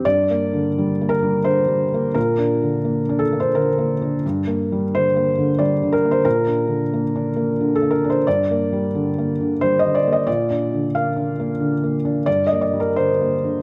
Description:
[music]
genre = neoclassical minimalist piano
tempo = 88 BPM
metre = 3/4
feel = rubato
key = G minor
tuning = A4 = 437 Hz
[part]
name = felt-muted upright piano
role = solo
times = 0.0-13.6 s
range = G2 to F5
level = -20 LUFS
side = equal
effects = none
[sound]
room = moderate scoring stage reverb, RT60 1.9 s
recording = none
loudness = -20 LUFS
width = mono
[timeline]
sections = 0.0-13.6 A section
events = none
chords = 0.0 Gm; 2.2 Bb; 4.2 Gm; 6.3 Bb; 8.3 Gm; 10.3 Bb; 12.3 Gm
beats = | 0.04 0.76 1.45 | 2.16 2.85 3.55 | 4.24 4.91 5.59 | 6.25 6.92 7.58 | 8.26 8.95 9.61 | 10.27 10.93 11.60 | 12.27 12.95

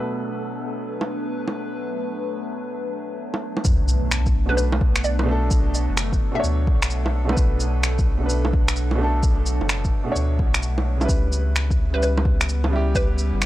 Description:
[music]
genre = future garage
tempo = 129 BPM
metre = 4/4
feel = swing 65% on 16ths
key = B minor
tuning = A4 = 440 Hz
[part]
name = warm upright piano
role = accompaniment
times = 0.0-13.5 s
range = B2 to C#5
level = -28 LUFS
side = right 1 dB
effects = sidechain pumping, tape echo
[part]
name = warbly tape-like pad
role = sustained chords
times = 0.0-13.5 s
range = F#3 to B4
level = -30 LUFS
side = equal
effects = chorus, built-in reverb, phaser, sidechain pumping
[part]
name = wind-like tuned noise texture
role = texture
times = 0.0-3.7 s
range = A4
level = -38 LUFS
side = right 2 dB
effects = built-in reverb
[part]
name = electronic bongos, shaker and finger snaps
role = drums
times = 1.0-13.5 s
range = none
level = -25 LUFS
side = right 1 dB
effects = studio ambience
[part]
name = warm sub bass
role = bass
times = 3.6-13.5 s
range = F#1 to D2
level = -22 LUFS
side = equal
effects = tube saturation, sidechain pumping
[part]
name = electronic kick drum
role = drums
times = 3.6-13.1 s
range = none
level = -21 LUFS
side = equal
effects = studio ambience
[part]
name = impact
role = sound effects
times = 3.6-5.5 s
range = none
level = -26 LUFS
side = left 1 dB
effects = none
[part]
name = hollow square pluck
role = melody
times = 4.5-6.8, 11.9-13.5 s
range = B4 to E5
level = -29 LUFS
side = equal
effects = lush chorus, tape echo
[sound]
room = little or no reverb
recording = dry, gritty hardware recording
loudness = -19 LUFS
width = side -15 dB against mid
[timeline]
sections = 0.0-3.6 A section; 3.6-13.5 B section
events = impact 3.6-5.5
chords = 0.0 Bm7; 11.1 C#m7b5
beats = 0.39 0.86 1.32 | 1.79 2.25 2.72 3.18 | 3.65 4.11 4.58 5.04 | 5.51 5.97 6.44 6.91 | 7.37 7.83 8.30 8.77 | 9.23 9.70 10.16 10.63 | 11.09 11.56 12.02 12.49 | 12.95 13.42

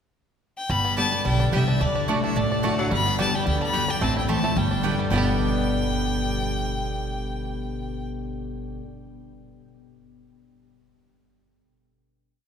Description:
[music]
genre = bluegrass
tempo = 217 BPM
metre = 4/4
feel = swing 54% on 8ths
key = G major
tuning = A4 = 438 Hz
[part]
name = clear fiddle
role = melody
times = 0.6-8.1 s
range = D5 to B5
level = -28 LUFS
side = left 2 dB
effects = none
[part]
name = lap resonator guitar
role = second line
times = 0.7-8.8 s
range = D3 to D4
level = -34 LUFS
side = left 2 dB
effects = none
[part]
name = picked steel-string acoustic guitar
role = accompaniment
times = 0.7-8.8 s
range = G2 to G4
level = -28 LUFS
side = left 1 dB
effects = none
[part]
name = bluegrass banjo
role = arpeggios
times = 0.7-8.8 s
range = G3 to G4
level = -32 LUFS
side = right 2 dB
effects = none
[part]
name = upright bass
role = bass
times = 0.7-8.8 s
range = G1 to D2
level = -27 LUFS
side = right 1 dB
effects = none
[part]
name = mandolin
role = stabs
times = 1.0-8.8 s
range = A3 to A5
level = -33 LUFS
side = right 4 dB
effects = none
[sound]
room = wet cathedral reverb, RT60 4.5 s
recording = recorded in a church or concert hall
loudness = -22 LUFS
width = side -7 dB against mid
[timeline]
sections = 0.0-0.7 pickup bar; 0.7-5.1 A section; 5.1-7.3 final chord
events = none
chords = 0.0 N.C.; 0.7 G; 1.8 D; 2.9 G; 4.0 Am; 4.6 G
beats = 0.15 0.42 | 0.70 0.98 1.25 1.53 | 1.81 2.08 2.36 2.64 | 2.91 3.19 3.46 3.74 | 4.02 4.29 4.57 4.84 | 5.12 5.39 5.67 5.94 | 6.22 6.50 6.77 7.05

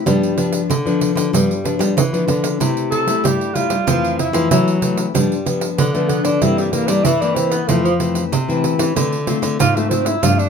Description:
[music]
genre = samba and choro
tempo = 94 BPM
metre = 4/4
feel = straight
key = C major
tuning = A4 = 437 Hz
[part]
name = nylon-string guitar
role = accompaniment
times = 0.0-10.5 s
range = F2 to F4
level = -20 LUFS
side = left 5 dB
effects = none
[part]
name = nylon-string guitar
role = bass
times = 0.1-10.5 s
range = G2 to G3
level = -20 LUFS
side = equal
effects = none
[part]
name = pandeiro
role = percussion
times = 0.1-10.5 s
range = none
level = -21 LUFS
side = right 6 dB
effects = none
[part]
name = breathy tenor saxophone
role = second line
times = 2.9-10.5 s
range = F3 to A4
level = -19 LUFS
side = right 1 dB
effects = none
[sound]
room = moderate studio reverb, RT60 0.6 s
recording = minimal, uncompressed stereo recording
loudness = -15 LUFS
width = side -6 dB against mid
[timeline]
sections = 0.0-10.5 A section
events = tenor saxophone solo 0.0-10.5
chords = 0.1 G7; 2.6 C6; 3.9 Fmaj7; 5.1 G7; 6.4 C7/G; 7.7 Fmaj7; 9.0 Dm7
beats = | 0.06 0.70 1.33 1.97 | 2.61 3.24 3.88 4.51 | 5.15 5.78 6.42 7.05 | 7.69 8.33 8.96 9.60 | 10.23

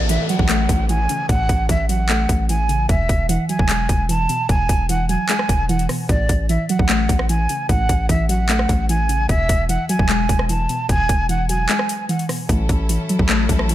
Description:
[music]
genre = hip hop, trap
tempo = 150 BPM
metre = 4/4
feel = half-time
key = A major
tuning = A4 = 441 Hz
[part]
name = breathy jazz flute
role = melody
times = 0.0-12.3 s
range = D5 to A5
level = -23 LUFS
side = right 2 dB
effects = low-pass filter, ping-pong delay
[part]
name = soft round pluck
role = accompaniment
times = 0.0-13.7 s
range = E2 to A3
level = -23 LUFS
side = equal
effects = chorus, low-pass filter
[part]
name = long sustained 808-style bass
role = bass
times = 0.0-13.7 s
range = E1 to A1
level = -21 LUFS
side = equal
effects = none
[part]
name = downlifter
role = sound effects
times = 0.0-2.9 s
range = none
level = -29 LUFS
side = left 1 dB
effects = none
[part]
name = trap drum kit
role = drums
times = 0.1-13.7 s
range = handclaps, hi-hat, kick drum, rim click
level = -20 LUFS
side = equal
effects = overdrive
[part]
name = bright symphonic string section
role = sustained chords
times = 12.5-13.7 s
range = F#3 to A4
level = -28 LUFS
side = left 2 dB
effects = none
[sound]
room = little or no reverb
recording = none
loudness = -16 LUFS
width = side -13 dB against mid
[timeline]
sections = 0.0-13.7 A section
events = break 11.7-12.5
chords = 0.0 A6; 2.9 Eadd9; 6.1 A6; 9.3 Eadd9; 12.5 A6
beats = 0.09 0.49 0.89 | 1.29 1.69 2.09 2.49 | 2.89 3.29 3.69 4.09 | 4.49 4.89 5.29 5.69 | 6.09 6.49 6.89 7.29 | 7.69 8.09 8.49 8.89 | 9.29 9.69 10.09 10.49 | 10.89 11.29 11.69 12.09 | 12.49 12.89 13.29 13.69

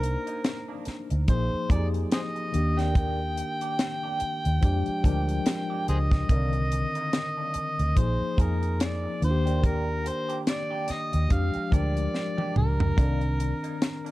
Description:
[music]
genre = lush 1970s-style soul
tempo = 72 BPM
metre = 4/4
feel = swing 58% on 16ths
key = F dorian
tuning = A4 = 438 Hz
[part]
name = overdriven harmonica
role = melody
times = 0.0-14.1 s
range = Ab4 to G5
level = -32 LUFS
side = equal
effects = tape echo
[part]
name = tine electric piano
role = accompaniment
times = 0.0-14.1 s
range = D3 to C5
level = -32 LUFS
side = left 3 dB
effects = medium stereo tremolo
[part]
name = electric guitar through a small old amp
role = riff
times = 0.0-14.1 s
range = Eb3 to Ab4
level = -39 LUFS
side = right 5 dB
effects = wah, spring reverb
[part]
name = vintage muted fingered electric bass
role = bass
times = 0.0-13.5 s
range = Bb1 to F2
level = -26 LUFS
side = equal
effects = none
[part]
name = tight funk drum kit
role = drums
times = 0.0-14.1 s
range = hi-hat, kick drum, snare drum, toms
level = -25 LUFS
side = equal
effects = none
[sound]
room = studio reverb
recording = dark, warm production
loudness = -24 LUFS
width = side -17 dB against mid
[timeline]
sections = 0.0-14.1 A section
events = drum fill 12.1-13.0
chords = 0.0 Cm9; 1.3 Bb7sus4; 2.5 Ebmaj7; 4.6 Fm69; 6.3 Cm9; 8.0 Bb7sus4; 9.2 Ebmaj7; 11.3 Fm69; 13.0 Cm9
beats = 0.45 1.29 2.12 | 2.96 3.79 4.62 5.46 | 6.29 7.13 7.96 8.80 | 9.63 10.47 11.30 12.14 | 12.98 13.81

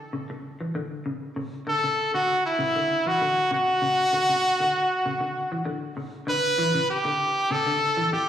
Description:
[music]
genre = afrobeat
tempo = 98 BPM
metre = 4/4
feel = straight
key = unclear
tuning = A4 = 440 Hz
[part]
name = semi-hollow electric guitar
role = arpeggios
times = 0.1-8.2 s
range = C#3 to E3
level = -32 LUFS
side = left 1 dB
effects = ensemble chorus, slapback echo
[part]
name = brilliant trumpet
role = melody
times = 1.7-8.3 s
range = E4 to B4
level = -22 LUFS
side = equal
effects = slapback echo
[sound]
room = moderate plate reverb, RT60 2.9 s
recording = live gig heard through the venue's PA, recital hall reverb, small room ambience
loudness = -22 LUFS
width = side -9 dB against mid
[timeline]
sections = 0.0-6.3 A section; 6.3-8.3 B section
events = none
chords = 0.0 Aadd11/C# (rootless)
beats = 0.14 0.75 | 1.37 1.98 2.60 3.21 | 3.82 4.43 5.05 5.66 | 6.27 6.88 7.50 8.11

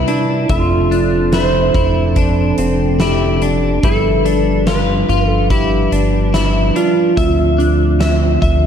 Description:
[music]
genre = dream pop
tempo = 72 BPM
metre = 4/4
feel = straight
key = unclear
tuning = A4 = 437 Hz
[part]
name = mellow tonewheel organ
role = sustained chords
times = 0.0-8.7 s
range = C3 to E5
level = -19 LUFS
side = right 3 dB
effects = slow rotary speaker
[part]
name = electric guitar at the edge of break-up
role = arpeggios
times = 0.0-8.7 s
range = C4 to E5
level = -20 LUFS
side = left 4 dB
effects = analog chorus, tape echo
[part]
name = chorused synth bass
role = bass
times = 0.0-8.7 s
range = F1 to D2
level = -17 LUFS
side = equal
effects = none
[part]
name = clean lap steel guitar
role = melody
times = 0.1-8.7 s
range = E4 to C5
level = -18 LUFS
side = right 1 dB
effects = tape echo
[part]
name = huge arena drum kit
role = drums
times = 0.1-8.6 s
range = hi-hat, kick drum, snare drum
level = -20 LUFS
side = equal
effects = none
[sound]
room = light reverb, studio reverb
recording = dark, warm production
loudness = -12 LUFS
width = side -8 dB against mid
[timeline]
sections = 0.0-8.7 A section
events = none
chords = 0.5 F6; 3.8 G7; 7.2 Dm9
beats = | 0.50 1.33 2.17 3.00 | 3.83 4.67 5.50 6.33 | 7.17 8.00

